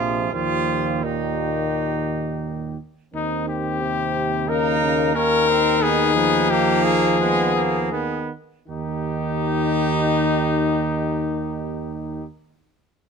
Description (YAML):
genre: classical, brass quintet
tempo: 77-90 BPM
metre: 4/4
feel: rubato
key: Eb major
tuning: A4 = 438 Hz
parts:
  - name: mellow trumpet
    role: melody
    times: 0.0-12.2 s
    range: Eb4 to Bb4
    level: -23 LUFS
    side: left 7 dB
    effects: none
  - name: clear trumpet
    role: second line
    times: 0.0-12.2 s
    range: Ab3 to G4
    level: -26 LUFS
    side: right 5 dB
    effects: none
  - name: mellow French horn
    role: accompaniment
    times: 0.0-12.2 s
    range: Eb3 to Eb4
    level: -28 LUFS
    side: left 6 dB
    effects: none
  - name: mellow euphonium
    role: accompaniment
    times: 0.0-12.2 s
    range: Bb2 to F3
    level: -27 LUFS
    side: right 4 dB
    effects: none
  - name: mellow tuba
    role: bass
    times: 0.0-12.2 s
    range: Bb1 to Eb2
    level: -26 LUFS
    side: right 6 dB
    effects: none
room: moderate studio reverb, RT60 0.9 s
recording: minimal, uncompressed stereo recording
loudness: -19 LUFS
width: side -6 dB against mid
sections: 0.0-3.1 A section; 3.1-8.7 B section; 8.7-11.7 C section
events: slowing down 1.8-8.7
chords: 0.3 Eb; 3.1 Eb7; 5.8 Abm/Eb; 8.7 Eb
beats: | 0.35 1.05 1.76 2.46 | 3.15 3.81 4.48 5.15 | 5.82 6.50 7.20 7.93 | 8.69 9.44 10.20 10.96